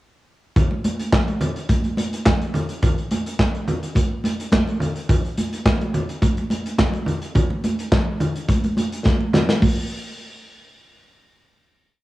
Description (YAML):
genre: funk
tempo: 106 BPM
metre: 4/4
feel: straight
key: none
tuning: none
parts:
  - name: modern studio drum kit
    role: drums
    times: 0.6-9.8 s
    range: handclaps, hi-hat, kick drum, snare drum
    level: -20 LUFS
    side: equal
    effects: none
  - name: congas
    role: percussion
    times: 0.6-9.9 s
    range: none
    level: -23 LUFS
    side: right 1 dB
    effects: none
room: light reverb, small room reverb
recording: home recording on cassette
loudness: -18 LUFS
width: side -17 dB against mid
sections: 0.6-9.6 verse; 9.6-11.9 final hit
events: drum fill 9.1-9.6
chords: none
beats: | 0.56 1.13 1.70 2.26 | 2.83 3.39 3.96 4.53 | 5.09 5.66 6.22 6.79 | 7.36 7.92 8.49 9.05 | 9.62